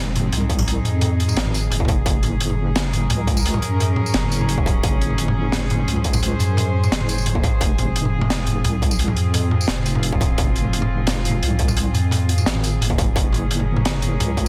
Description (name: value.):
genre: half-time drum and bass.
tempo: 173 BPM.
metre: 4/4.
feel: half-time.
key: F phrygian.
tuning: A4 = 440 Hz.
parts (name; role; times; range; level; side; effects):
warm chamber cello section; sustained chords; 0.0-14.5 s; F3 to C5; -30 LUFS; equal; sidechain pumping.
deep soft wobble bass; bass; 0.0-14.5 s; F1 to Gb2; -24 LUFS; equal; chorus.
crunchy breakbeat drum kit; drums; 0.2-14.4 s; hi-hat, snare drum, tambourine, toms; -24 LUFS; equal; none.
electronic kick drum; drums; 0.5-14.4 s; none; -23 LUFS; equal; distortion.
room: light reverb, small room ambience.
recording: dense, heavily limited modern master.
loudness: -20 LUFS.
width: mono.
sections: 0.0-14.5 A section.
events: none.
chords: 0.0 Fm7; 2.1 Gbadd9; 7.6 Fm; 13.2 Gbadd9.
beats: 0.32 | 0.67 1.02 1.36 1.71 | 2.06 2.40 2.75 3.10 | 3.45 3.79 4.14 4.49 | 4.83 5.18 5.53 5.87 | 6.22 6.57 6.91 7.26 | 7.61 7.95 8.30 8.65 | 8.99 9.34 9.69 10.04 | 10.38 10.73 11.08 11.42 | 11.77 12.12 12.46 12.81 | 13.16 13.50 13.85 14.20.